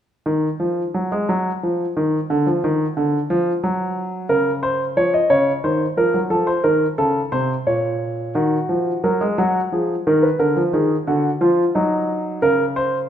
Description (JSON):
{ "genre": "classical, baroque-style two-part invention for grand piano", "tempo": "89 BPM", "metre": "3/4", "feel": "straight", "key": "Eb minor", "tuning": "A4 = 438 Hz", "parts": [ { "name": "warm grand piano", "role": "solo", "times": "0.3-13.1 s", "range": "Bb2 to Eb5", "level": "-17 LUFS", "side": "equal", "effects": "none" } ], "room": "moderate scoring stage reverb, RT60 1.6 s", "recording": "minimal, uncompressed stereo recording", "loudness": "-17 LUFS", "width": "side -9 dB against mid", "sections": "0.3-8.3 A section; 8.3-13.1 B section", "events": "none", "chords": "0.3 N.C.; 4.3 Bbm/Db; 5.6 Cdim/Eb; 6.3 F7; 7.7 Bbm; 8.3 Ebm; 9.7 Fdim; 10.4 Bb7/D; 11.7 Ebm/Gb; 12.4 Bbm/Db", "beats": "| 0.26 0.94 1.62 | 2.30 2.97 3.63 | 4.29 4.96 5.63 | 6.30 6.98 7.66 | 8.35 9.03 9.72 | 10.39 11.07 11.75 | 12.42" }